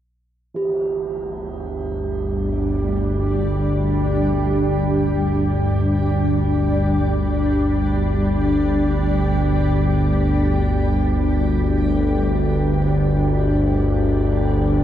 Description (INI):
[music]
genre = dark ambient drone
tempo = free time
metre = none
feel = none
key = unclear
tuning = A4 = 440 Hz
[part]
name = granular cloud pad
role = sustained chords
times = 2.1-14.8 s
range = G3 to G4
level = -22 LUFS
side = equal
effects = built-in reverb, shimmer reverb
[part]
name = tam-tam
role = percussion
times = 0.5-0.8 s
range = none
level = -39 LUFS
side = right 3 dB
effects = low-pass filter on cymbals
[part]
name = analog drone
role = drone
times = 1.3-14.8 s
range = G1 to D2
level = -19 LUFS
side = equal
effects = chorus
[part]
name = bronze singing bowl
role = texture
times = 0.6-14.8 s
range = G4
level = -29 LUFS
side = right 3 dB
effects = shimmer reverb
[sound]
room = wet cathedral reverb, RT60 5.5 s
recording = dark, warm production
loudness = -17 LUFS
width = side -11 dB against mid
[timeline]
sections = 0.6-14.8 A section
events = fade-in on drum 0.6-14.8; fade-out on ambient pad 0.6-14.8; fade-out on singing bowl 0.6-14.8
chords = 0.6 G5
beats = free time